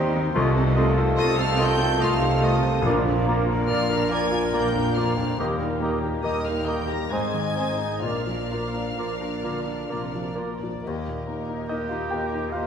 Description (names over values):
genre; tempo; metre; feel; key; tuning
classical, romantic movement for piano and orchestra; 64-73 BPM; 3/4; rubato; Eb major; A4 = 441 Hz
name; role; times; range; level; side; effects
rich chamber violin section; melody; 0.0-12.7 s; Bb4 to Bb6; -34 LUFS; left 1 dB; none
warm concert grand piano; melody; 0.0-12.7 s; Bb1 to G5; -26 LUFS; left 2 dB; none
clear clarinet; second line; 0.0-12.7 s; Eb4 to G4; -36 LUFS; left 5 dB; none
mellow concert flute; second line; 0.0-12.7 s; Eb5 to C6; -38 LUFS; left 2 dB; none
rich chamber violin section; second line; 0.0-12.7 s; G4 to Bb5; -37 LUFS; left 1 dB; none
warm cor anglais; second line; 0.0-12.7 s; G4 to Eb5; -36 LUFS; right 3 dB; none
mellow bassoon; accompaniment; 0.0-12.7 s; G3 to C4; -33 LUFS; right 2 dB; none
warm chamber viola section; accompaniment; 0.0-12.7 s; Bb3 to Eb5; -34 LUFS; right 2 dB; none
mellow French horn section; sustained chords; 0.0-12.7 s; Bb3 to F4; -35 LUFS; left 3 dB; none
warm trombone section; sustained chords; 0.0-10.5 s; Bb2 to Bb3; -33 LUFS; right 4 dB; none
dark trumpet section; stabs; 0.0-10.4 s; G4 to Eb5; -30 LUFS; right 1 dB; none
rich chamber double bass section; bass; 0.0-12.7 s; Ab1 to Eb2; -32 LUFS; right 3 dB; none
rich symphonic cello section; bass; 0.0-12.7 s; Eb2 to Eb3; -32 LUFS; right 2 dB; none
timpani; percussion; 2.9-4.1 s; Bb2; -33 LUFS; equal; none
room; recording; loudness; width
wet scoring stage reverb, RT60 1.6 s; minimal, uncompressed stereo recording; -21 LUFS; side -7 dB against mid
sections
0.0-10.8 A section; 10.8-12.7 B section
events
none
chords
0.3 F7/C; 2.9 Bb; 5.4 Eb; 7.1 Ab; 8.1 Bb; 10.8 Eb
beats
| 0.35 1.18 2.02 | 2.86 3.69 4.54 | 5.39 6.24 7.12 | 8.05 8.98 9.90 | 10.81 11.68 12.54